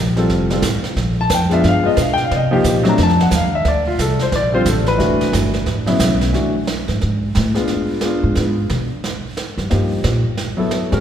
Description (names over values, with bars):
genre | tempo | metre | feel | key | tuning
jazz piano trio | 179 BPM | 4/4 | swing 62% on 8ths | unclear | A4 = 439 Hz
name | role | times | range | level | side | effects
upright bass | bass | 0.0-11.0 s | E1 to C3 | -19 LUFS | equal | none
warm concert grand piano | melody | 0.2-11.0 s | C#3 to Bb5 | -18 LUFS | left 1 dB | none
jazz brush drum kit | drums | 0.2-11.0 s | brushed snare drum, hi-hat, kick drum, snare drum | -23 LUFS | right 3 dB | none
room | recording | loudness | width
wet church reverb, RT60 2.7 s | recorded in a church or concert hall | -15 LUFS | side -9 dB against mid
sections
0.0-6.3 A section; 6.3-11.0 A section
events
grand piano solo 0.0-6.3; upright bass solo 6.3-11.0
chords
0.3 Fadd9; 1.0 Bb5; 1.6 G7b9; 2.3 Cm7; 3.0 Ebsus2; 3.7 Bbmaj9; 5.0 Em7; 5.7 A69; 6.3 D5; 7.7 Abdim7; 9.0 Gm7; 10.4 B5